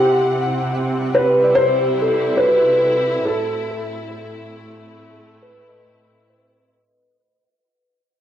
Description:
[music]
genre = ambient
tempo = 71 BPM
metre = 4/4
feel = straight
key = unclear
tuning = A4 = 440 Hz
[part]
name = felt-muted upright piano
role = melody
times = 0.0-5.8 s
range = G4 to C5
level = -16 LUFS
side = equal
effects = cassette tape, plate reverb, analog delay
[part]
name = rich studio string section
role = sustained chords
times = 0.0-6.7 s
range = A2 to F#5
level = -24 LUFS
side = equal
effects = cassette tape
[part]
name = muted felt-like synth keys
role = arpeggios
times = 0.0-7.4 s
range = F#4 to D#5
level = -26 LUFS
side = left 1 dB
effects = chorus, cassette tape, analog delay
[part]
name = twinkling granular texture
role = texture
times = 0.0-6.7 s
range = E4 to F#5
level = -35 LUFS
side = right 1 dB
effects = none
[sound]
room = wet studio reverb, RT60 0.6 s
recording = home recording on cassette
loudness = -15 LUFS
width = side -10 dB against mid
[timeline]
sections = 0.0-6.7 A section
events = fade-out 0.0-6.7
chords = 0.0 C; 3.3 Am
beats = 0.75 1.59 2.43 | 3.28 4.13 4.99 5.86

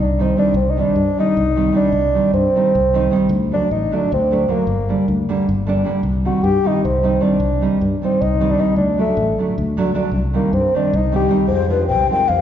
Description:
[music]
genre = balkan folk, Balkan wedding band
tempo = 307 BPM (eighths)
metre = 7/8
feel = straight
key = C dorian sharp4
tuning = A4 = 439 Hz
[part]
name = dark bassoon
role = second line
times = 0.0-12.4 s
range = G2 to G4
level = -19 LUFS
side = equal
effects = none
[part]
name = fingered electric bass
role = bass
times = 0.0-12.4 s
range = G1 to G2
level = -21 LUFS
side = left 1 dB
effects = none
[part]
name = nylon-string guitar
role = accompaniment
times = 0.2-12.3 s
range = D3 to F4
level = -19 LUFS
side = right 2 dB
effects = none
[part]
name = breathy mellow low ney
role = melody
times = 11.5-12.4 s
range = B4 to G5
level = -16 LUFS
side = left 6 dB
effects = none
[sound]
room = wet recital hall reverb, RT60 1.8 s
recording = heard from further back in the room, nothing above 7.5 kHz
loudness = -15 LUFS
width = side -10 dB against mid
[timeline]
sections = 0.0-11.5 A section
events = bassoon solo 0.0-11.5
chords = 0.0 Cm; 3.3 D; 4.7 Gm; 6.0 Cm; 8.8 D; 10.1 Cm; 11.5 Fm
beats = 0.17 0.36 | 0.56 0.75 0.95 1.14 1.34 1.53 1.73 | 1.93 2.12 2.32 2.51 2.71 2.90 3.10 | 3.30 3.49 3.69 3.88 4.08 4.27 4.47 | 4.67 4.86 5.06 5.25 5.45 5.64 5.84 | 6.03 6.23 6.42 6.62 6.81 7.01 7.20 | 7.40 7.59 7.79 7.98 8.18 8.37 8.57 | 8.76 8.96 9.15 9.35 9.54 9.73 9.93 | 10.12 10.32 10.51 10.71 10.90 11.10 11.29 | 11.48 11.68 11.87 12.07 12.26

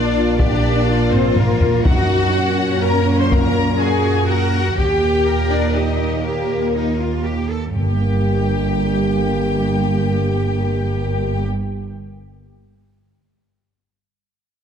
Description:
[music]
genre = cinematic, epic orchestral film score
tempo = 122 BPM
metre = 3/4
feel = straight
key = G minor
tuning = A4 = 445 Hz
[part]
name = warm symphonic violin section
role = melody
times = 0.0-11.5 s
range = G4 to C6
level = -26 LUFS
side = left 5 dB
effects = none
[part]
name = rich symphonic violin section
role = second line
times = 0.0-11.5 s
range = Bb3 to G5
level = -26 LUFS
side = left 5 dB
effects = none
[part]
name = clear symphonic viola section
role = accompaniment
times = 0.0-11.4 s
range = Bb3 to C5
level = -25 LUFS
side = equal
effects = none
[part]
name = mellow French horn section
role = sustained chords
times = 0.0-11.5 s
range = Bb3 to Bb4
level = -26 LUFS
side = left 7 dB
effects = none
[part]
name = warm trombone section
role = sustained chords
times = 0.0-11.5 s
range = A#2 to Bb3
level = -24 LUFS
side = right 3 dB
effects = none
[part]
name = bright studio cello section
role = bass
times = 0.0-11.5 s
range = G2 to A#4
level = -24 LUFS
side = right 2 dB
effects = none
[part]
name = rich symphonic double bass section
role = bass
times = 0.0-11.5 s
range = G1 to F#2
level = -21 LUFS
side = right 3 dB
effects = none
[part]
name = solo taiko drums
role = drums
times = 0.4-5.7 s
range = none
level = -19 LUFS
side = left 1 dB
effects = none
[part]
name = timpani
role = percussion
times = 7.8-12.2 s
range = G2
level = -27 LUFS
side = left 1 dB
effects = none
[sound]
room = moderate scoring stage reverb, RT60 2.0 s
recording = dark, warm production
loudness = -15 LUFS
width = side -8 dB against mid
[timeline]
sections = 0.0-7.8 A section; 7.8-10.7 B section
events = drum fill 1.1-1.9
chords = 0.0 Bb; 1.9 F#; 4.8 Eb; 7.8 Gm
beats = | 0.38 0.87 1.36 | 1.85 2.34 2.82 | 3.31 3.80 4.28 | 4.77 5.26 5.75 | 6.25 6.75 7.25 | 7.75 8.24 8.73 | 9.22 9.71 10.20

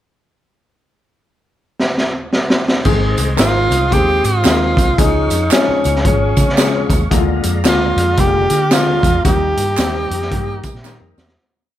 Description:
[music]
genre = uptempo 1960s-style soul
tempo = 113 BPM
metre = 4/4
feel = swing 61% on 8ths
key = Ab major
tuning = A4 = 445 Hz
[part]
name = raw garage drum kit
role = drums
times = 1.8-11.4 s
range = crash cymbal, hi-hat, kick drum, snare drum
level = -16 LUFS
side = equal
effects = none
[part]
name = clear baby grand piano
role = accompaniment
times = 2.9-11.3 s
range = D3 to Bb4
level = -21 LUFS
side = left 7 dB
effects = none
[part]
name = tonewheel organ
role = sustained chords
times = 2.9-11.4 s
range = Ab3 to Db6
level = -27 LUFS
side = right 1 dB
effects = overdrive, chorus vibrato, slow rotary speaker
[part]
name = vintage muted fingered electric bass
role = bass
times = 2.9-11.4 s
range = F1 to D3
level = -19 LUFS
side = equal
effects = none
[part]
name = tambourine and handclaps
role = percussion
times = 2.9-11.3 s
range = none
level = -27 LUFS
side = right 7 dB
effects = none
[part]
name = breathy tenor saxophone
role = melody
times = 3.4-11.1 s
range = Db4 to G4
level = -17 LUFS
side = right 1 dB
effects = none
[sound]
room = light reverb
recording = none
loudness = -12 LUFS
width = side -12 dB against mid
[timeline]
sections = 0.7-2.9 pickup bar; 2.9-11.4 verse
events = drum fill 1.8-2.9, 10.9-11.4; fade-out 9.2-11.4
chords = 0.7 N.C.; 2.9 Ab; 5.0 Db; 7.1 Bb7/D; 9.2 Eb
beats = | 0.73 1.26 1.79 2.32 | 2.86 3.39 3.92 4.45 | 4.98 5.52 6.05 6.58 | 7.12 7.65 8.18 8.72 | 9.25 9.79 10.32 10.85

